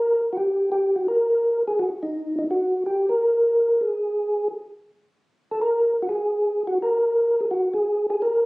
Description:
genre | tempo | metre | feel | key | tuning
jazz | 168 BPM | 4/4 | swing 66% on 8ths | unclear | A4 = 441 Hz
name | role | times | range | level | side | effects
percussive tonewheel organ | solo | 0.0-8.5 s | Eb4 to Bb4 | -20 LUFS | equal | slow rotary speaker, chorus vibrato
room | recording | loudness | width
moderate studio reverb, RT60 0.6 s | recorded on a phone in the room, studio reverb | -20 LUFS | side -26 dB against mid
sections
0.0-8.5 A section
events
none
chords
none

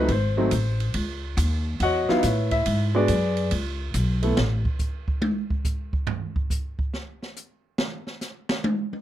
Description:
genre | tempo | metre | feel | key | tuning
jazz piano trio | 140 BPM | 4/4 | swing 66% on 8ths | unclear | A4 = 440 Hz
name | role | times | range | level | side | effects
warm concert grand piano | melody | 0.0-4.4 s | F#3 to F#5 | -23 LUFS | equal | none
upright bass | bass | 0.0-4.6 s | G#1 to A2 | -24 LUFS | equal | none
open jazz drum kit | drums | 0.1-9.0 s | hi-hat, kick drum, ride cymbal, snare drum, toms | -28 LUFS | right 1 dB | none
room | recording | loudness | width
little or no reverb | close, detailed microphones | -22 LUFS | side -12 dB against mid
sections
0.0-9.0 A section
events
grand piano solo 0.0-9.0; drum solo 4.4-9.0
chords
0.1 G#(b9); 1.0 C#m11; 2.7 G#m7b5; 3.5 B7sus2; 4.4 N.C.

